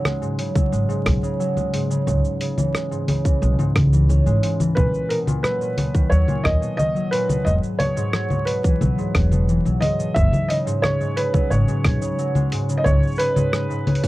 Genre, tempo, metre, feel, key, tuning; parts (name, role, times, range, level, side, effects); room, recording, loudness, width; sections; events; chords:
folktronica; 89 BPM; 4/4; straight; A4 = 441 Hz
concert harp; arpeggios; 0.0-14.1 s; G#2 to C#4; -23 LUFS; equal; tape echo
lo-fi sampler-style drum kit; drums; 0.1-14.1 s; congas, hi-hat, rim click, shaker; -24 LUFS; left 1 dB
electronic kick drum; drums; 0.6-14.1 s; -20 LUFS; equal
upright bass; bass; 0.7-13.0 s; E1 to D#2; -19 LUFS; equal
felt-muted upright piano; melody; 4.8-14.1 s; A#4 to E5; -24 LUFS; right 1 dB; tape echo
little or no reverb; dry, close 1970s-style studio recording, vinyl crackle; -18 LUFS; side -17 dB against mid
0.0-14.1 A section
0.0 F#sus2; 2.1 C#m; 4.8 Bmaj7; 7.5 Eadd9; 10.2 F#sus2; 12.9 C#5